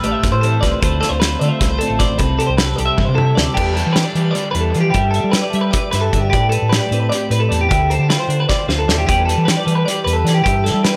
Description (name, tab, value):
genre	math rock and midwest emo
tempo	305 BPM (eighths)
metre	7/8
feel	straight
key	unclear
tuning	A4 = 439 Hz
part	glockenspiel with brass mallets	melody	0.0-0.6 s	E6	-32 LUFS	equal	tape echo
part	twelve-string electric guitar	accompaniment	0.0-11.0 s	A2 to E5	-25 LUFS	equal	warbly pitch drift, tape echo
part	twelve-string electric guitar	arpeggios	0.0-11.0 s	G4 to E5	-22 LUFS	equal	tape echo
part	overdriven fingered electric bass	bass	0.0-10.9 s	A1 to G3	-21 LUFS	equal	none
part	loose indie drum kit	drums	0.0-10.9 s	crash cymbal, hi-hat, kick drum, snare drum, toms	-22 LUFS	equal	tape echo
room	light reverb, small room ambience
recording	echo-heavy mix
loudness	-16 LUFS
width	mono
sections	0.0-3.6 A section; 3.6-11.0 B section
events	drum fill 3.0-3.6, 8.5-9.1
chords	0.0 Am9; 0.8 Dm7; 2.2 C6; 3.6 Em7; 4.9 G69; 6.3 Am11; 7.7 Dm11; 9.1 Em7; 10.5 G69